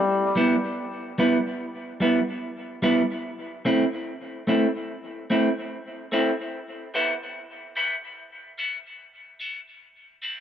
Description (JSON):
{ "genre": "reggae", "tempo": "73 BPM", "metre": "4/4", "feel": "straight", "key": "E minor", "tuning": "A4 = 440 Hz", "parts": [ { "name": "semi-hollow electric guitar", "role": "accompaniment", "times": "0.4-10.4 s", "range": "G3 to E4", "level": "-24 LUFS", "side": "right 1 dB", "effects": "high-pass filter, dub echo" } ], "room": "moderate spring reverb, RT60 2.5 s", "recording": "none", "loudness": "-23 LUFS", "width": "side -9 dB against mid", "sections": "0.0-10.4 A section", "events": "filter sweep on clean electric guitar 3.2-10.4", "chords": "0.0 Em; 3.2 Am; 6.5 Em; 9.8 Am", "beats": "0.77 1.59 2.42 | 3.24 4.06 4.89 5.71 | 6.53 7.36 8.18 9.00 | 9.82" }